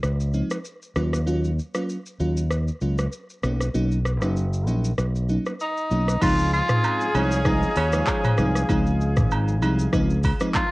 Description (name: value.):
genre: afrobeats.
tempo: 97 BPM.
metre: 4/4.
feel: swing 55% on 16ths.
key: Db major.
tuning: A4 = 443 Hz.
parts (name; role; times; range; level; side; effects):
fingered electric bass; bass; 0.0-10.3 s; Gb1 to Eb2; -23 LUFS; equal; none.
afro-pop drum kit; drums; 0.0-10.7 s; crash cymbal, handclaps, hi-hat, kick drum, rim click, shaker, toms; -26 LUFS; equal; overdrive, cassette tape.
crystalline FM electric piano; accompaniment; 0.3-10.6 s; F3 to C5; -26 LUFS; right 1 dB; chorus.
warm tenor saxophone; melody; 5.6-10.7 s; Db4 to F4; -25 LUFS; equal; cassette tape.
warm horn section; second line; 6.2-10.5 s; Db4 to Ab4; -28 LUFS; left 1 dB; none.
agogo bells and woodblock; percussion; 6.2-10.7 s; none; -31 LUFS; right 4 dB; none.
room: light reverb.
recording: home recording on cassette.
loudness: -20 LUFS.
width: side -21 dB against mid.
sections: 0.0-6.2 A section; 6.2-10.7 B section.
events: none.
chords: 0.0 Dbmaj7; 1.0 Ebm7; 3.4 Cbmaj7; 6.2 Dbmaj7.